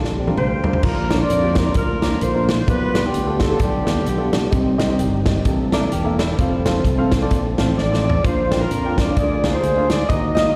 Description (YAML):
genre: uptempo gospel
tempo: 130 BPM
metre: 4/4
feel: swing 58% on 8ths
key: Bb major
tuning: A4 = 439 Hz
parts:
  - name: warm upright piano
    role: accompaniment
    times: 0.0-10.6 s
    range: Bb2 to G5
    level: -26 LUFS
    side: equal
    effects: slapback echo
  - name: mellow French horn section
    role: sustained chords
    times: 0.0-10.6 s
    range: none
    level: barely audible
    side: none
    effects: none
  - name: fingered electric bass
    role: bass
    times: 0.0-10.5 s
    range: E1 to F2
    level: -25 LUFS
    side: equal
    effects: none
  - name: natural country drum kit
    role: drums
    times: 0.0-10.5 s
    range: crash cymbal, hi-hat, kick drum, snare drum, toms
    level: -23 LUFS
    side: equal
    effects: none
  - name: tonewheel organ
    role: sustained chords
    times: 0.2-10.6 s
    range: D3 to A4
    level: -30 LUFS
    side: equal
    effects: none
  - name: breathy alto saxophone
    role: melody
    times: 0.4-4.4, 7.8-10.6 s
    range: G4 to Eb5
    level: -26 LUFS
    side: equal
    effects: slapback echo
  - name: dark horn section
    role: melody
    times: 0.4-4.5, 7.8-10.6 s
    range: D4 to Eb5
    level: -28 LUFS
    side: equal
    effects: slapback echo
  - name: clean electric guitar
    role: second line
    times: 5.7-6.6 s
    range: G3 to Bb4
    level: -32 LUFS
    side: equal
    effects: slapback echo
room: light reverb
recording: live gig heard through the venue's PA, recital hall reverb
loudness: -19 LUFS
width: mono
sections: 0.8-10.6 A section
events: drum fill 0.0-0.8, 7.8-8.2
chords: 0.0 Bb6; 0.8 Bb; 2.7 G7/B; 4.5 Cm; 5.5 C13; 6.4 F; 8.2 Bb; 9.2 Bb7/D